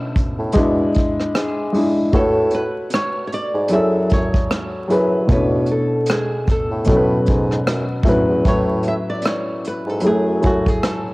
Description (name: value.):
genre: lo-fi hip hop.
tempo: 76 BPM.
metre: 4/4.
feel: swing 55% on 16ths.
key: A major.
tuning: A4 = 441 Hz.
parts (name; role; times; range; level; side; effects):
flamenco guitar; melody; 0.0-11.1 s; F#4 to E5; -24 LUFS; equal; cassette tape.
dark upright piano; accompaniment; 0.0-11.1 s; A2 to G#5; -19 LUFS; left 1 dB; cassette tape.
vintage brush drum kit; drums; 0.2-11.0 s; hi-hat, kick drum, rim click; -21 LUFS; equal; cassette tape.
mellow bassoon; bass; 0.4-10.7 s; D2 to B2; -23 LUFS; equal; none.
room: moderate spring reverb, RT60 2.1 s.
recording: home recording on cassette, vinyl crackle.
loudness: -16 LUFS.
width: side -22 dB against mid.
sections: 0.0-8.4 A section; 8.4-11.1 B section.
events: none.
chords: 0.0 Bm11; 0.6 E7/B; 2.1 A69; 3.7 F#m9; 5.3 Bm11; 6.9 A69; 10.0 F#m9.